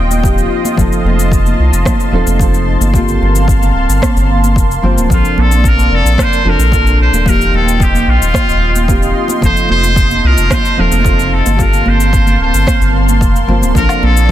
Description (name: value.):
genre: sunset chillout.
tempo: 111 BPM.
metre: 4/4.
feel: straight.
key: Bb major.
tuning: A4 = 440 Hz.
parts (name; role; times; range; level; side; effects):
nylon-string guitar; accompaniment; 0.0-14.3 s; F3 to C5; -19 LUFS; moving between left 2 dB and right 4 dB; auto-pan, low-pass filter, digital delay.
lush unison pad; sustained chords; 0.0-14.3 s; Bb3 to C6; -19 LUFS; equal; chorus, phaser.
round analog bass; bass; 0.0-14.3 s; D1 to C2; -12 LUFS; equal; tube saturation.
electronic cabasa, rim click and woodblock; drums; 0.1-14.3 s; none; -22 LUFS; left 3 dB; overdrive.
congas; percussion; 0.1-14.1 s; none; -21 LUFS; right 4 dB; none.
electronic kick drum; drums; 0.2-14.3 s; none; -15 LUFS; equal; overdrive.
trumpet with straight mute; melody; 5.1-14.3 s; F4 to C5; -16 LUFS; equal; ping-pong delay.
room: light reverb.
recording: dense, heavily limited modern master.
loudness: -9 LUFS.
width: side -12 dB against mid.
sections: 0.0-14.3 A section.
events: none.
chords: 0.0 Eb69; 0.8 F7; 2.9 Gm11; 5.1 Bbmaj9; 7.3 Eb69; 9.4 F7; 11.6 Gm11; 13.8 Bbmaj9.